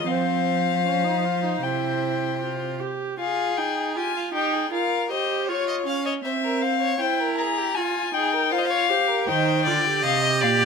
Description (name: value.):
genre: classical, baroque-style fugue for string quartet.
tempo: 79 BPM.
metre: 4/4.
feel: straight.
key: F minor.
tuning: A4 = 442 Hz.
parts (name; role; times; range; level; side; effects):
warm violin; melody; 0.0-10.7 s; Db5 to Bb5; -24 LUFS; left 9 dB; none.
warm viola; accompaniment; 0.0-10.7 s; C4 to G4; -27 LUFS; right 6 dB; none.
rich cello; bass; 0.0-2.8, 9.3-10.7 s; Bb2 to F3; -27 LUFS; right 6 dB; none.
rich violin; second line; 0.1-10.7 s; F4 to F5; -27 LUFS; left 2 dB; none.
room: moderate recital hall reverb, RT60 1.4 s.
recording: close, detailed microphones.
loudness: -21 LUFS.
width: side -5 dB against mid.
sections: 0.0-3.2 A section; 3.2-10.7 B section.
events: none.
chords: 0.1 Csus4/F; 1.6 C; 3.2 Fm; 4.7 Gm7b5/F; 6.2 C7; 7.8 Fm; 9.3 Cm.